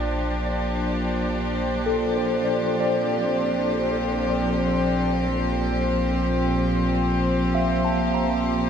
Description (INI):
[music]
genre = ambient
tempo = free time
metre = none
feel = none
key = Bb lydian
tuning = A4 = 444 Hz
[part]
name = clear studio string section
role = sustained chords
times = 0.0-8.7 s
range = Bb2 to C5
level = -22 LUFS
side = equal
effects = none
[part]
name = tine electric piano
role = arpeggios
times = 0.0-8.7 s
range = A4 to Bb5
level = -28 LUFS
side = left 1 dB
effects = overdrive, fast stereo tremolo, tape echo
[part]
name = round analog bass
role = bass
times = 0.0-8.7 s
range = Bb1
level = -30 LUFS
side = equal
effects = none
[sound]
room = wet huge ambient reverb, RT60 7.9 s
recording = in a vast, echoing space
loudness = -21 LUFS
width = side -8 dB against mid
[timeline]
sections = 0.0-8.7 A section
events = none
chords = 0.0 Bb69